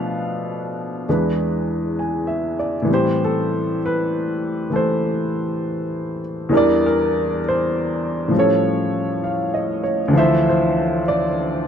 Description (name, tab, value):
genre	jazz ballad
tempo	66 BPM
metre	4/4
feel	swing 68% on 8ths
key	A minor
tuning	A4 = 440 Hz
part	clear upright piano	solo	0.0-11.7 s	D2 to G#5	-18 LUFS	equal	none
room	light reverb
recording	dark, warm production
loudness	-18 LUFS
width	side -8 dB against mid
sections	0.0-2.9 A section; 2.9-11.7 B section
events	none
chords	0.0 Bm7b5; 1.1 E7; 2.9 Am9; 6.5 Em7b5; 8.3 Aaug7; 10.1 Dm9